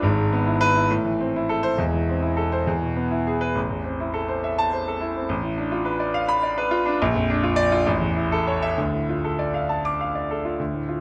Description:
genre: classical, virtuoso piano study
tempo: 65-71 BPM (dotted quarters)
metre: 6/8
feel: rubato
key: A minor, D minor from 7.0 s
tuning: A4 = 440 Hz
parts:
  - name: clear concert grand piano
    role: solo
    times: 0.0-11.0 s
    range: E1 to D6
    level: -23 LUFS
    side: equal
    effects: none
room: light reverb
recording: close, detailed microphones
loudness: -23 LUFS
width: mono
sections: 0.0-10.6 A section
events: none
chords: 0.0 E/G#; 0.9 Am; 1.8 Am/E; 2.7 E; 3.6 Am; 5.3 Bm7b5/A; 7.0 Bb; 7.9 A; 8.8 Dm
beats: | 0.02 0.89 | 1.78 2.67 | 3.56 4.44 | 5.30 6.16 | 7.00 7.87 | 8.76 9.68 | 10.58

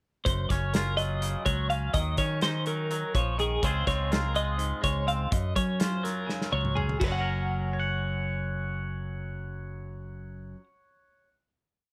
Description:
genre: math rock and midwest emo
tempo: 248 BPM (eighths)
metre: 7/8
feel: straight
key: Gb lydian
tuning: A4 = 440 Hz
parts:
  - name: twangy electric guitar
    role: accompaniment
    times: 0.3-11.4 s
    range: Gb2 to Gb5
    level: -36 LUFS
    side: equal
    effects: none
  - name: twelve-string electric guitar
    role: arpeggios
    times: 0.3-10.6 s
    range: Gb4 to Gb5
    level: -34 LUFS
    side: equal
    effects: tremolo, slapback echo
  - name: fingered electric bass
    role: bass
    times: 0.3-10.5 s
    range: Gb1 to Gb3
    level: -33 LUFS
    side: equal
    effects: none
  - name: loose indie drum kit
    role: drums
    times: 0.3-7.1 s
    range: crash cymbal, hi-hat, kick drum, snare drum, toms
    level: -33 LUFS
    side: equal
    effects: none
room: light reverb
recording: none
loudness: -29 LUFS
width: mono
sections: 0.3-7.0 A section; 7.0-10.4 final chord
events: drum fill 6.3-7.0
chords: 0.3 Gbmaj7; 1.9 Ebm7; 3.6 Dbmaj7; 5.3 Gbmaj7; 7.0 Gb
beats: | 0.26 0.50 0.74 0.98 1.22 1.46 1.70 | 1.94 2.18 2.42 2.66 2.90 3.14 3.38 | 3.63 3.87 4.11 4.35 4.59 4.83 5.07 | 5.32 5.56 5.80 6.04 6.28 6.52 6.77 | 7.01 7.25 7.49 7.73 7.98 8.22 8.46 | 8.70 8.94 9.19 9.43 9.67 9.91 10.15

